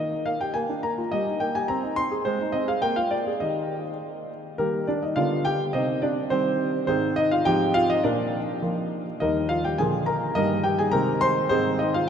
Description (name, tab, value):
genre	classical-period piano sonatina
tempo	104 BPM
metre	2/4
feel	straight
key	Eb major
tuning	A4 = 440 Hz
part	clear concert grand piano	solo	0.0-12.1 s	Eb2 to C6	-22 LUFS	equal	none
room	wet cathedral reverb, RT60 5.6 s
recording	in a vast, echoing space, nothing above 11.0 kHz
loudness	-22 LUFS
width	side -8 dB against mid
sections	0.0-4.6 A section; 4.6-12.1 B section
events	none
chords	0.0 Eb; 0.5 Bb; 1.1 Eb/G; 1.7 Ab/C; 2.3 Ab; 2.8 Bb7; 3.4 Eb; 5.2 G7/D; 5.7 Cm; 6.9 Ab; 7.5 Fm/Ab; 8.0 Bb; 9.2 Eb; 9.8 Bb; 10.4 Eb/G; 10.9 Ab/C; 11.5 Ab